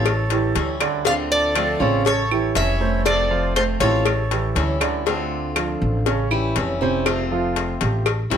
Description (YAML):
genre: latin, Cuban son and guajira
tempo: 120 BPM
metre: 4/4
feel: straight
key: D minor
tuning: A4 = 440 Hz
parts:
  - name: Cuban tres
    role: melody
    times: 0.0-4.8 s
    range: C5 to F5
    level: -23 LUFS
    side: equal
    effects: none
  - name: breathy bright jazz flute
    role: second line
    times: 0.0-4.8 s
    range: A4 to D5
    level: -29 LUFS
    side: right 1 dB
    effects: none
  - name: picked old ladder-braced acoustic guitar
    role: accompaniment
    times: 0.0-8.4 s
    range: C3 to F4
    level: -26 LUFS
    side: left 3 dB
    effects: none
  - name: warm grand piano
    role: arpeggios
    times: 0.0-8.4 s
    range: C3 to F5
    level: -24 LUFS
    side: right 6 dB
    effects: none
  - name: upright bass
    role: bass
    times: 0.0-8.4 s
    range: F1 to D2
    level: -24 LUFS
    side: equal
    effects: none
  - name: claves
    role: percussion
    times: 0.1-8.3 s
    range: none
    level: -29 LUFS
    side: right 9 dB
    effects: none
  - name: cowbell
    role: percussion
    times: 0.1-8.4 s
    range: none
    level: -25 LUFS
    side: left 7 dB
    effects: none
room: light reverb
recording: none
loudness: -18 LUFS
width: side -8 dB against mid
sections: 0.0-5.1 A section; 5.1-8.4 B section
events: none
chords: 0.1 A7; 1.1 Dm7; 2.1 A7; 3.1 F; 4.1 A7; 5.1 Dm7; 6.1 A7; 7.1 F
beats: 0.06 0.56 | 1.06 1.56 2.06 2.56 | 3.06 3.56 4.06 4.56 | 5.06 5.56 6.06 6.56 | 7.06 7.56 8.06